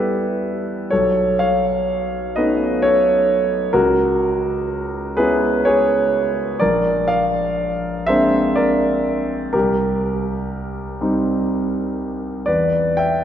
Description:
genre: classical, impressionist solo piano.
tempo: 41 BPM (dotted quarters).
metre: 6/8.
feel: uneven beats, rubato.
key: unclear.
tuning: A4 = 440 Hz.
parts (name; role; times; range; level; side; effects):
warm concert grand piano; solo; 0.0-13.2 s; Bb1 to G5; -16 LUFS; equal; none.
room: wet church reverb, RT60 3.3 s.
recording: recorded in a church or concert hall.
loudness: -16 LUFS.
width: side -9 dB against mid.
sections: 0.0-13.2 A section.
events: none.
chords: 0.0 Em7; 0.9 B9; 3.7 C#m7; 6.6 Bb9; 9.5 Cm7; 12.5 Em7.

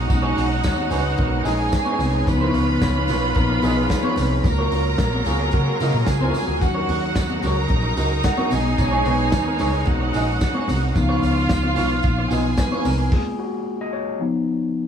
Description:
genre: disco.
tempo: 111 BPM.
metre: 4/4.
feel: straight.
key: unclear.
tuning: A4 = 442 Hz.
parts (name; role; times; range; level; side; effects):
warm studio violin section; second line; 0.0-13.1 s; F4 to Cb6; -26 LUFS; right 2 dB; none.
clear studio string section; sustained chords; 0.0-13.1 s; Db3 to F4; -28 LUFS; right 2 dB; none.
hollow-body short-scale fingered electric bass; bass; 0.0-13.1 s; Bb1 to Db3; -23 LUFS; equal; none.
electric guitar at the edge of break-up; accompaniment; 0.1-13.0 s; D#4 to D#5; -28 LUFS; right 3 dB; tube saturation.
overdriven tine electric piano; accompaniment; 0.1-14.9 s; F3 to Gb5; -25 LUFS; left 4 dB; none.
warm soul drum kit; drums; 0.1-13.2 s; crash cymbal, hi-hat, kick drum, snare drum; -24 LUFS; equal; none.
congas; percussion; 0.1-13.0 s; none; -31 LUFS; left 3 dB; none.
tambourine; percussion; 0.1-13.0 s; none; -40 LUFS; right 3 dB; none.
room: light reverb.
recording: small room ambience.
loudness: -18 LUFS.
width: side -8 dB against mid.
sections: 0.0-14.9 A section.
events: tine electric piano solo 0.0-14.9; stop 13.1-14.9.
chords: 0.0 B69; 2.3 Db7; 4.4 Gbmaj7; 6.6 Ebm7; 8.5 B69; 11.0 Db7; 13.1 Ab13sus4; 14.2 B.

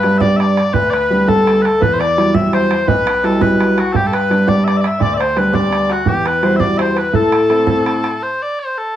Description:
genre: celtic folk, Celtic jig.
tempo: 113 BPM (dotted quarters).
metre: 6/8.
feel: straight.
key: unclear.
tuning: A4 = 440 Hz.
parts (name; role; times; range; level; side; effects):
mellow small bagpipes; melody; 0.0-9.0 s; F#4 to E5; -18 LUFS; equal; none.
accordion; second line; 0.0-7.8 s; F#4 to E5; -18 LUFS; left 3 dB; none.
clear baby grand piano; accompaniment; 0.0-8.2 s; B1 to F#4; -16 LUFS; right 1 dB; none.
bodhran; percussion; 0.0-8.1 s; none; -20 LUFS; right 4 dB; none.
room: wet studio reverb, RT60 0.6 s.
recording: heard from further back in the room.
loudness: -12 LUFS.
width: side -11 dB against mid.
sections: 0.0-8.2 A section.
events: none.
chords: 0.0 G; 1.8 Emadd9; 3.9 G; 6.1 Emadd9; 7.1 Am; 8.2 N.C..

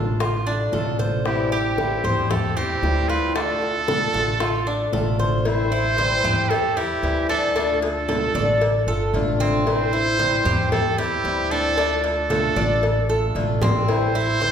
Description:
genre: latin, Cuban son and guajira.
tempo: 114 BPM.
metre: 4/4.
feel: straight.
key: A minor.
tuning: A4 = 439 Hz.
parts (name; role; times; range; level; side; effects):
picked swing-style acoustic guitar; accompaniment; 0.0-14.5 s; D3 to F4; -27 LUFS; left 3 dB; none.
Cuban tres; arpeggios; 0.0-14.5 s; C4 to D5; -25 LUFS; right 1 dB; none.
upright bass; bass; 0.0-14.5 s; G1 to E2; -26 LUFS; equal; none.
bongos and cowbell; percussion; 0.2-14.5 s; none; -29 LUFS; left 4 dB; none.
congas; percussion; 0.2-14.5 s; none; -28 LUFS; equal; none.
bright trumpet; melody; 1.3-14.5 s; G4 to C5; -24 LUFS; right 3 dB; none.
room: wet recital hall reverb, RT60 1.6 s.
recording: recorded in a church or concert hall.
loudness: -19 LUFS.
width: side -8 dB against mid.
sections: 0.0-5.5 A section; 5.5-14.5 B section.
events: drum fill 13.4-13.9.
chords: 0.0 Dm; 1.3 Am7; 3.4 Dm; 5.5 Am7; 7.6 Dm; 9.7 Am7; 11.8 Dm; 13.9 Am7.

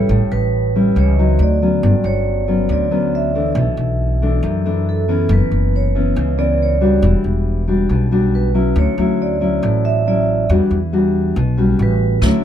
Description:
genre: bossa nova.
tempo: 138 BPM.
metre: 4/4.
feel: straight.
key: D major.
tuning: A4 = 440 Hz.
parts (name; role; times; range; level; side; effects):
nylon-string guitar; accompaniment; 0.0-12.4 s; F#2 to F#4; -18 LUFS; left 3 dB; none.
vibraphone with medium mallets; accompaniment; 0.0-12.4 s; A4 to E5; -21 LUFS; right 5 dB; none.
upright bass; bass; 0.0-12.3 s; E1 to F#2; -17 LUFS; equal; none.
muted studio string section; sustained chords; 12.2-12.4 s; E4 to E5; -38 LUFS; left 2 dB; none.
jazz brush drum kit; drums; 12.2-12.3 s; kick drum, rim click, snare drum; -18 LUFS; equal; none.
room: little or no reverb.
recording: none.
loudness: -14 LUFS.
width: side -10 dB against mid.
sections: 0.0-12.4 A section.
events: vibraphone solo 0.0-12.4.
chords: 0.1 A7; 1.4 D7b9; 1.8 Gmaj7#11; 3.6 Bm11; 5.3 F#7sus4; 7.0 Em9; 8.8 Dmaj9; 10.5 Em9; 11.8 A13.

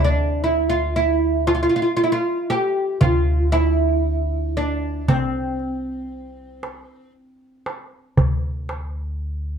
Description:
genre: Turkish makam ensemble.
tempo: 116 BPM (eighths).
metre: 10/8.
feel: straight.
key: D makam nihavent.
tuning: A4 = 439 Hz.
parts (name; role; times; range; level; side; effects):
oud; melody; 0.0-7.1 s; C4 to G4; -20 LUFS; right 2 dB; plate reverb.
upright bass; bass; 0.0-9.6 s; C2 to D2; -23 LUFS; equal; none.
darbuka; percussion; 0.4-8.9 s; none; -22 LUFS; right 1 dB; none.
room: light reverb.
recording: dark, warm production.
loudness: -18 LUFS.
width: side -7 dB against mid.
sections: 0.0-9.6 A section.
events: none.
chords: none.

